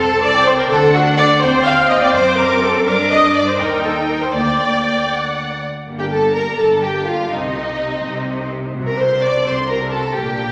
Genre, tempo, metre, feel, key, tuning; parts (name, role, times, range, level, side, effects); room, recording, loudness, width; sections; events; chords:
quick classical-period movement for string orchestra; 84 BPM (dotted quarters); 6/8; rubato; G minor; A4 = 440 Hz
clear symphonic violin section; melody; 0.0-10.5 s; Eb5 to D6; -25 LUFS; equal
rich symphonic violin section; second line; 0.0-10.5 s; Eb4 to F5; -21 LUFS; equal
clear symphonic viola section; accompaniment; 0.0-10.5 s; Bb3 to F5; -21 LUFS; equal
clear symphonic double bass section; bass; 0.0-10.5 s; G1 to G2; -28 LUFS; equal
rich symphonic cello section; bass; 0.0-10.5 s; G2 to Eb4; -24 LUFS; equal
wet scoring stage reverb, RT60 1.7 s; -16 LUFS; mono
0.0-5.9 A section; 5.9-10.5 B section
0.0 Bbmaj13/C; 0.7 D; 1.4 Cm/Eb; 2.1 D7/F#; 2.9 G5; 3.6 Eb; 4.4 Gm/D; 5.9 Gm; 7.3 Cm; 8.7 D7/C